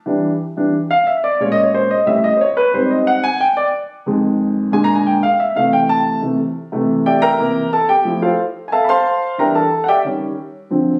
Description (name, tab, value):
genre	jazz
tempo	180 BPM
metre	4/4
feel	straight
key	unclear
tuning	A4 = 440 Hz
part	warm upright piano	solo	0.1-10.9 s	F2 to C6	-16 LUFS	equal	none
room	light reverb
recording	recorded on a phone in the room, studio reverb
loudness	-16 LUFS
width	mono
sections	0.0-8.1 A section; 8.1-11.0 A section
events	upright piano solo 0.0-11.0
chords	0.1 Em7; 1.4 Bbm7; 2.1 A7; 2.7 Abmaj7; 4.1 Fm7; 4.7 Bb7; 5.4 C6; 7.4 C7; 8.1 Fmaj7; 9.4 Em7b5; 10.0 Eb7